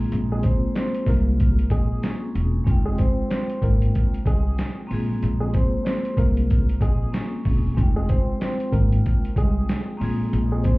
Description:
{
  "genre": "hip hop, boom-bap hip-hop",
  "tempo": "94 BPM",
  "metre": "4/4",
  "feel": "swing 60% on 16ths",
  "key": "unclear",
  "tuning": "A4 = 439 Hz",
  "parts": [
    { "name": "vibraphone with medium hard mallets", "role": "accompaniment", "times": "0.0-10.8 s", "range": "Ab3 to G5", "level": "-28 LUFS", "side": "left 1 dB", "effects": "high-pass filter, low-pass filter" },
    { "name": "upright bass", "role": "bass", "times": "0.0-10.7 s", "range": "E1 to C2", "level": "-22 LUFS", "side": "equal", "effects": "none" },
    { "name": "boom bap sampler-style drum kit", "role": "drums", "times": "0.1-10.8 s", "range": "handclaps, hi-hat, kick drum, snare drum", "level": "-22 LUFS", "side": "equal", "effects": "none" },
    { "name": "dark upright piano", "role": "melody", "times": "0.3-10.8 s", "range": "Ab3 to C5", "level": "-30 LUFS", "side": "equal", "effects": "high-pass filter, low-pass filter, digital delay" }
  ],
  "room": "small room ambience",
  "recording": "heard muffled through a wall, club reverb, vinyl crackle, EQ",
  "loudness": "-19 LUFS",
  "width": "side -21 dB against mid",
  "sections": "0.0-10.8 A section",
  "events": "none",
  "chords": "0.0 Bbm7; 2.7 Fm9; 4.9 Bbm7; 7.8 Fm9; 10.0 Bb7(no3)"
}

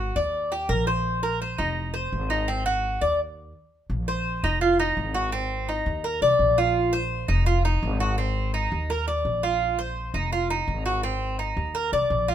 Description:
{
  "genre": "latin, Cuban son and guajira",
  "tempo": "168 BPM",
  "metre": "4/4",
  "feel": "straight",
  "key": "Bb major",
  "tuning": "A4 = 438 Hz",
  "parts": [
    { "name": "Cuban tres", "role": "arpeggios", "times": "0.0-12.3 s", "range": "C4 to D5", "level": "-24 LUFS", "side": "right 1 dB", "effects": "none" },
    { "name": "upright bass", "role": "bass", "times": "0.0-12.3 s", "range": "F1 to Eb2", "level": "-28 LUFS", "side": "equal", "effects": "none" }
  ],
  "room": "moderate studio reverb, RT60 0.8 s",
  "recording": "minimal, uncompressed stereo recording",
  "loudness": "-22 LUFS",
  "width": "side -10 dB against mid",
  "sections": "0.0-3.9 A section; 3.9-12.3 B section",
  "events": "stop 3.2-3.9",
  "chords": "0.3 Ebmaj7; 1.1 Bbsus2; 1.8 F5; 2.5 Ab7; 3.2 N.C.; 3.9 Bbsus2; 4.6 Fm7; 5.3 Ab; 6.0 Eb5; 6.8 Bbsus2; 7.5 Fm7; 8.2 Ab; 8.9 Eb5; 9.6 Bbsus2; 10.3 Fm7; 11.0 Ab; 11.8 Eb5"
}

